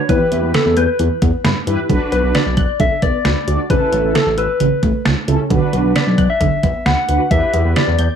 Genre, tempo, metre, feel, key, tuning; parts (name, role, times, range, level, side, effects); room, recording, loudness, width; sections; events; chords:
synth-pop; 133 BPM; 4/4; straight; B minor; A4 = 440 Hz
soft struck synth lead; melody; 0.0-8.2 s; A4 to F#5; -18 LUFS; left 2 dB; chorus, slapback echo
mellow synth brass; accompaniment; 0.1-7.8 s; C#4 to D5; -21 LUFS; right 1 dB; chorus, phaser
resonant blip pluck; arpeggios; 0.1-8.1 s; C#3 to G6; -22 LUFS; right 4 dB; phaser, slapback echo
smooth gliding synth bass; bass; 0.1-8.1 s; A1 to G2; -18 LUFS; equal
detuned 8-bit digital drum machine; drums; 0.1-8.1 s; hi-hat, kick drum, snare drum; -18 LUFS; right 1 dB; overdrive
light reverb, digital ambience; -13 LUFS; side -8 dB against mid
0.0-8.2 A section
0.1 Em; 1.9 Bm; 3.7 A; 5.5 Bm; 7.3 Em